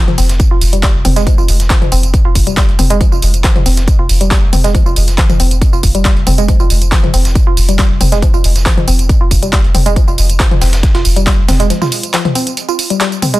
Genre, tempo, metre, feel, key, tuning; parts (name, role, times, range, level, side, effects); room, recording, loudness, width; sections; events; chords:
driving peak-time techno; 138 BPM; 4/4; straight; F minor; A4 = 436 Hz
woody wave-folded pluck; riff; 0.0-13.4 s; F3 to F4; -17 LUFS; equal; chorus, sidechain pumping, dub echo
saturated sub bass; bass; 0.1-11.7 s; F1; -14 LUFS; equal; overdrive, sidechain pumping, low-pass filter
dusty soul sampler-style drum kit; drums; 0.1-13.3 s; hi-hat, snare drum; -27 LUFS; right 1 dB; overdrive, high-pass filter on hats, high-pass filter on snare
punchy analog drum machine; drums; 0.1-13.4 s; handclaps, hi-hat, tambourine, toms; -17 LUFS; equal
electronic kick drum; drums; 0.4-11.4 s; -12 LUFS; equal
digital ambience; dense, heavily limited modern master; -9 LUFS; side -18 dB against mid
0.0-13.4 A section
break 11.7-13.4
0.0 F5